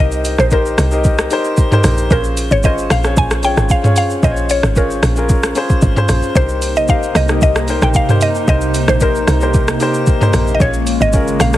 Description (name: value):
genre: amapiano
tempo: 113 BPM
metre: 4/4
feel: straight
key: C phrygian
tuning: A4 = 440 Hz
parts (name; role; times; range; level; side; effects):
- mallet-like synth pluck; melody; 0.0-11.5 s; Bb4 to Ab5; -19 LUFS; equal; chorus, tape echo
- warm grand piano; accompaniment; 0.0-11.6 s; Db4 to Eb5; -19 LUFS; left 2 dB; none
- woody log drum bass; bass; 0.0-11.6 s; Ab1 to C2; -16 LUFS; equal; none
- smooth R&B drum kit; drums; 0.1-11.6 s; hi-hat, kick drum, rim click, shaker, toms; -16 LUFS; equal; vintage 12-bit sampler grit
- hollow soft pad; sustained chords; 6.4-11.6 s; C3 to Eb4; -21 LUFS; right 2 dB; chorus, sidechain pumping
room: light reverb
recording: heavily compressed radio sound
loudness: -11 LUFS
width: side -14 dB against mid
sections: 0.0-11.6 A section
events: none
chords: 0.0 Cm7; 2.1 Bbm7; 6.4 Cm7; 10.6 Bbm7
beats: 0.51 1.04 1.58 | 2.11 2.64 3.17 3.70 | 4.23 4.76 5.29 5.82 | 6.36 6.89 7.42 7.95 | 8.48 9.01 9.54 10.07 | 10.60 11.13